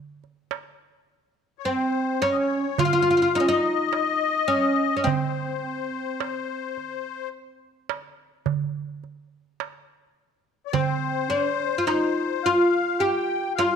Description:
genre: Arabic maqam ensemble.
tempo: 106 BPM (eighths).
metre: 10/8.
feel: straight.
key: C maqam kurd.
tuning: A4 = 439 Hz.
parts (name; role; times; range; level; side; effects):
darbuka; percussion; 0.2-13.8 s; none; -28 LUFS; right 10 dB; none.
musette accordion; second line; 1.6-13.8 s; C5 to G5; -26 LUFS; left 9 dB; none.
oud; melody; 1.7-13.8 s; C4 to G4; -23 LUFS; equal; none.
room: wet echo chamber reverb, RT60 1.4 s, small room ambience.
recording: 1960s-style stereo with parts hard left and right.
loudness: -22 LUFS.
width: side -7 dB against mid.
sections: 0.0-10.7 A section; 10.7-13.8 B section.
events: none.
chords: none.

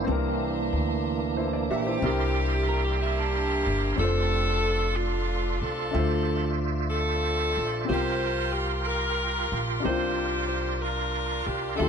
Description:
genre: gospel.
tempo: 62 BPM (dotted quarters).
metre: 6/8.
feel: straight.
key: unclear.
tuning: A4 = 439 Hz.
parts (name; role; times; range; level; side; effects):
warm baby grand piano; accompaniment; 0.0-11.9 s; C3 to C6; -32 LUFS; left 4 dB; none.
tonewheel organ; sustained chords; 0.0-11.9 s; E3 to C6; -32 LUFS; right 5 dB; fast rotary speaker, chorus vibrato.
upright bass; bass; 0.0-11.9 s; F1 to D2; -29 LUFS; equal; none.
warm chamber string section; sustained chords; 0.1-2.0 s; D5 to C6; -41 LUFS; right 1 dB; none.
edgy saxophone section; melody; 1.7-11.9 s; A3 to C5; -28 LUFS; equal; none.
twelve-string electric guitar; second line; 2.7-4.0 s; D4 to Bb4; -33 LUFS; right 3 dB; none.
room: light reverb.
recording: nothing above 10.6 kHz.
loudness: -24 LUFS.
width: side -7 dB against mid.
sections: 0.1-2.0 A section; 2.0-11.9 B section.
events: tonewheel organ solo 0.1-2.0.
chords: 0.1 C9; 4.0 F6; 5.9 Dm9; 7.9 C7sus4; 9.8 C9sus4.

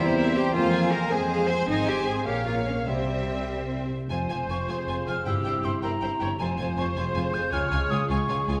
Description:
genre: classical.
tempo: 105 BPM (dotted quarters).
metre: 6/8.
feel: rubato.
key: F minor.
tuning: A4 = 440 Hz.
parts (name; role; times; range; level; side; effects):
rich symphonic violin section; melody; 0.0-8.6 s; E5 to Ab5; -39 LUFS; equal; none.
bright oboe; second line; 0.0-3.9 s; C5 to F5; -39 LUFS; equal; none.
clear chamber violin section; second line; 0.0-8.6 s; E4 to Db5; -41 LUFS; equal; none.
hollow concert flute; second line; 0.0-8.5 s; F5 to G6; -34 LUFS; equal; none.
mellow clarinet; second line; 0.0-3.9 s; C5 to Db5; -39 LUFS; equal; none.
rich chamber viola section; accompaniment; 0.0-8.6 s; G3 to Db5; -38 LUFS; equal; none.
warm bassoon; accompaniment; 0.0-3.9 s; G3 to C4; -37 LUFS; equal; none.
clear French horn section; sustained chords; 0.0-8.6 s; G3 to F4; -36 LUFS; equal; none.
concert harp; arpeggios; 0.0-8.6 s; F2 to Ab5; -34 LUFS; equal; none.
clear symphonic cello section; bass; 0.0-8.6 s; Db2 to C5; -32 LUFS; equal; none.
rich symphonic double bass section; bass; 0.0-8.6 s; F1 to F2; -34 LUFS; equal; none.
room: wet scoring stage reverb, RT60 2.0 s.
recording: none.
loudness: -26 LUFS.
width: mono.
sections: 0.0-4.1 A section; 4.1-8.6 B section.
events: none.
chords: 0.0 C7/E; 0.5 Fm; 1.7 Ab; 2.3 Bbm; 2.9 C; 4.1 Fm; 5.3 C7/G; 6.4 Fm; 7.5 Db.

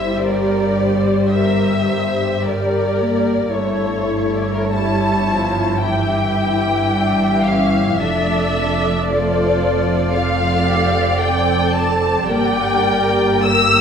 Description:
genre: classical, slow romantic movement for string orchestra.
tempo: 49-57 BPM.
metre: 4/4.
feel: rubato.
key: D minor.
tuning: A4 = 440 Hz.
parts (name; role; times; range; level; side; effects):
muted symphonic violin section; melody; 0.0-13.8 s; Bb4 to E6; -20 LUFS; left 2 dB; none.
muted symphonic violin section; second line; 0.0-13.8 s; E4 to E5; -22 LUFS; left 1 dB; none.
muted symphonic viola section; accompaniment; 0.0-13.8 s; E3 to A4; -21 LUFS; equal; none.
muted symphonic cello section; bass; 0.0-13.8 s; F2 to G2; -22 LUFS; right 2 dB; none.
muted symphonic double bass section; bass; 0.0-13.8 s; F1 to G1; -23 LUFS; right 1 dB; none.
room: wet recital hall reverb, RT60 1.3 s.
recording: heard from further back in the room.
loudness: -15 LUFS.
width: side -7 dB against mid.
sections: 0.0-13.8 A section.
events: none.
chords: 0.0 Edim/G; 3.5 A7/G; 8.0 Dm/F; 12.3 Gm.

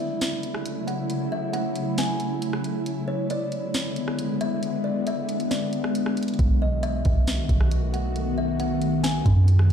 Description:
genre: hip hop, atmospheric cloud-rap.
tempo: 136 BPM.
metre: 4/4.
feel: half-time.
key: unclear.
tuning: A4 = 440 Hz.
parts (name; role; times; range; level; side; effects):
kalimba; melody; 0.0-9.7 s; C#5 to G#5; -32 LUFS; left 2 dB; ping-pong delay.
ethereal airy pad; sustained chords; 0.0-9.7 s; C#3 to F#4; -26 LUFS; left 1 dB; ensemble chorus, built-in reverb, sidechain pumping.
concert harp; arpeggios; 0.0-1.7 s; D4 to G#4; -38 LUFS; equal; ping-pong delay.
smooth R&B drum kit; drums; 0.2-9.7 s; hi-hat, kick drum, rim click, snare drum; -28 LUFS; equal; none.
soft 808-style bass; bass; 6.4-9.7 s; B1 to F#2; -21 LUFS; right 1 dB; none.
room: little or no reverb.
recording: played on a big sound system in a bare room, stone room reverb.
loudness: -22 LUFS.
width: side -8 dB against mid.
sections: 0.0-9.7 A section.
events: break 0.0-6.4.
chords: 0.0 F#m7; 2.9 E7; 6.4 B7.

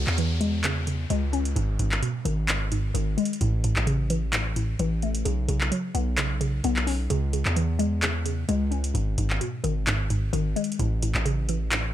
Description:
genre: hip hop, trap.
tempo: 130 BPM.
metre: 4/4.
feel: half-time.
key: C# minor.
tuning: A4 = 439 Hz.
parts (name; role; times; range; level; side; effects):
glassy wavetable pluck; accompaniment; 0.0-11.9 s; G#2 to C#4; -27 LUFS; left 1 dB; chorus, low-pass filter.
distorted 808-style bass; bass; 0.0-11.9 s; G#1 to E2; -26 LUFS; equal; distortion.
downlifter; sound effects; 0.0-3.4 s; none; -38 LUFS; left 1 dB; none.
booming analog drum machine; drums; 0.1-11.8 s; handclaps, hi-hat; -29 LUFS; equal; none.
room: little or no reverb.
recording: none.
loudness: -23 LUFS.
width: side -12 dB against mid.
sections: 0.0-11.9 A section.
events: filter sweep on synth pluck 0.0-7.1.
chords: 0.0 C#m; 1.6 G#m; 3.4 A; 5.3 Bsus2; 7.1 C#m; 8.9 G#m; 10.8 A.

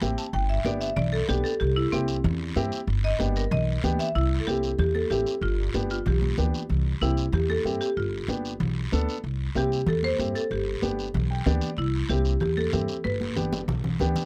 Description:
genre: latin, cumbia.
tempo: 189 BPM.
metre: 4/4.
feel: straight.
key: C major.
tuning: A4 = 442 Hz.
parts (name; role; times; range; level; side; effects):
marimba with hard mallets; melody; 0.0-14.0 s; C4 to A5; -31 LUFS; equal; none.
dark upright piano; accompaniment; 0.0-14.2 s; B3 to G5; -33 LUFS; equal; none.
upright bass; bass; 0.0-14.1 s; G1 to G2; -29 LUFS; equal; none.
congas; percussion; 0.0-14.2 s; none; -34 LUFS; equal; none.
guiro; percussion; 0.0-14.3 s; none; -42 LUFS; equal; none.
room: little or no reverb.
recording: close, detailed microphones.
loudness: -26 LUFS.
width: mono.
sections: 0.0-4.2 A section; 4.2-14.3 B section.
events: marimba solo 0.0-4.2; upright piano fill 11.1-11.8; drum fill 13.0-14.3.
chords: 0.3 G; 1.6 C; 2.9 G; 4.2 C; 5.4 G7; 6.7 C; 8.0 G7; 9.2 C; 10.5 G; 11.8 C; 13.0 G.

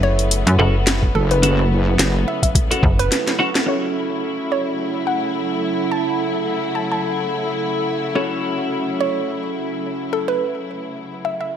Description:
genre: glitch hop.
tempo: 107 BPM.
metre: 4/4.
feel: swing 56% on 16ths.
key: F# minor.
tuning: A4 = 440 Hz.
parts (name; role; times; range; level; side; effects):
woody wave-folded pluck; melody; 0.0-11.5 s; A4 to A5; -25 LUFS; right 1 dB; chorus, digital delay.
rich studio string section; sustained chords; 0.0-11.5 s; C#3 to E4; -26 LUFS; left 2 dB; sidechain pumping.
slap-like FM bass; bass; 0.0-3.1 s; F#1 to F#2; -17 LUFS; equal; tube saturation.
warbly tape-like pad; texture; 0.0-11.5 s; E4 to F#5; -26 LUFS; right 2 dB; chorus, built-in reverb, sidechain pumping.
drum and bass drum kit; drums; 0.2-3.8 s; crash cymbal, hi-hat, rim click, snare drum; -21 LUFS; equal; low-pass filter on hats, low-pass filter on snare, low-pass filter on cymbals, low-pass filter on room.
twelve-string electric guitar; stabs; 0.6-11.5 s; C#4 to A4; -24 LUFS; equal; wide subtle chorus, sidechain pumping, low-pass filter, digital delay.
electronic kick drum; drums; 1.0-3.0 s; none; -18 LUFS; equal; none.
wobble bass; bass; 1.1-2.2 s; F#1; -17 LUFS; equal; chorus.
room: moderate plate reverb, RT60 1.9 s, digital ambience.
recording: bright 1980s-style digital production.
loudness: -17 LUFS.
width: side -9 dB against mid.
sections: 0.0-3.7 A section; 3.7-11.6 B section.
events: kick drops out 3.1-3.7; drum fill 3.1-3.7; band accent 3.5; filter sweep on clean electric guitar 3.7-11.6.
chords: 0.0 F#m7.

